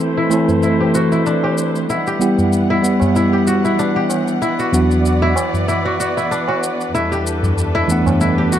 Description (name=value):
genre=organic downtempo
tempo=95 BPM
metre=4/4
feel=swing 55% on 16ths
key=E minor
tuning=A4 = 442 Hz
part: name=bell-like tine electric piano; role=accompaniment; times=0.0-8.6 s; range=E2 to F#5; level=-16 LUFS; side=right 1 dB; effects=medium stereo tremolo, tape echo
part: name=rich symphonic string section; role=sustained chords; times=0.0-8.6 s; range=E2 to F#5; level=-21 LUFS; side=left 1 dB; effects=low-pass filter
part: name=kora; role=arpeggios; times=0.0-8.6 s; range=D4 to G4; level=-20 LUFS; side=left 1 dB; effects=low-pass filter, tape echo
part: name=shaker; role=drums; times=0.0-8.6 s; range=none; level=-30 LUFS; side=left 3 dB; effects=none
part: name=tabla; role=percussion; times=0.3-8.6 s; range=none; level=-23 LUFS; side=right 1 dB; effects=none
room=light reverb, small room ambience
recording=dark, warm production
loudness=-14 LUFS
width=side -10 dB against mid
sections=0.0-8.6 A section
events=none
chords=0.0 Am/E; 1.9 Em; 6.9 Gmaj7/E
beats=0.00 0.63 1.26 | 1.89 2.52 3.15 3.79 | 4.42 5.05 5.68 6.31 | 6.94 7.58 8.21